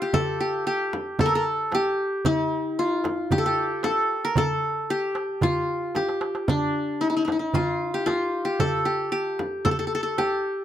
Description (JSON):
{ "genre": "Arabic maqam ensemble", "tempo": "113 BPM", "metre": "4/4", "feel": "straight", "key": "unclear", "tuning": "A4 = 440 Hz", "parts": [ { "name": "qanun", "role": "melody", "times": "0.0-10.6 s", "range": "D4 to Bb4", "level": "-23 LUFS", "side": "left 1 dB", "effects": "none" }, { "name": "darbuka", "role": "percussion", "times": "0.1-10.3 s", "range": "none", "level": "-30 LUFS", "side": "right 4 dB", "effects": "none" }, { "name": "frame drum", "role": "percussion", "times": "0.1-10.3 s", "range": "none", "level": "-29 LUFS", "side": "equal", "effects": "none" } ], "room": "light reverb", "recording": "none", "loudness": "-22 LUFS", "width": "side -11 dB against mid", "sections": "0.0-10.6 A section", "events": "drum fill 5.9-6.5", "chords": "none" }